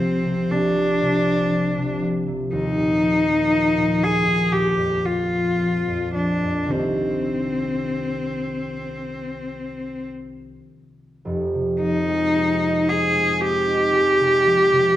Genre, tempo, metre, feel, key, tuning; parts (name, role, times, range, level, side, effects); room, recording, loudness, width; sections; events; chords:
classical, impressionist duo for cello and harp; 51-61 BPM; 4/4; rubato; C minor, F minor from 11.3 s; A4 = 439 Hz
rich cello; melody; 0.0-15.0 s; C4 to Ab4; -20 LUFS; left 1 dB
concert harp; accompaniment; 0.0-15.0 s; F1 to Eb4; -23 LUFS; equal
wet recital hall reverb, RT60 1.5 s; dark, warm production; -18 LUFS; side -12 dB against mid
0.0-11.3 A section; 11.3-15.0 B section
0.0 Bbadd9/C (rootless); 2.5 Ebsus2; 4.5 Bbsus2; 6.7 Cm9; 11.3 Fm9